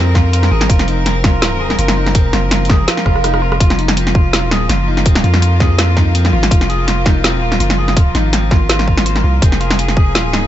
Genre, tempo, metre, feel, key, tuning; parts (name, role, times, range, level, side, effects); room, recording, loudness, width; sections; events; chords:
half-time drum and bass; 165 BPM; 4/4; half-time; F phrygian; A4 = 440 Hz
bright studio cello section; sustained chords; 0.0-10.5 s; F3 to Bb4; -21 LUFS; left 1 dB; sidechain pumping
clean electric guitar; arpeggios; 0.0-10.5 s; C4 to C5; -22 LUFS; left 2 dB; digital delay
long sustained 808-style bass; bass; 0.0-10.5 s; F1 to F2; -15 LUFS; equal
electronic kick drum; drums; 0.1-10.0 s; -13 LUFS; equal
drum and bass drum kit; drums; 0.2-10.4 s; hi-hat, rim click, snare drum; -17 LUFS; equal
swell; sound effects; 3.0-3.6 s; -23 LUFS; right 6 dB
digital ambience; nothing above 7.9 kHz; -11 LUFS; side -12 dB against mid
0.0-10.5 A section
swell 3.0-3.6; drum fill 3.1-3.6
0.0 Fm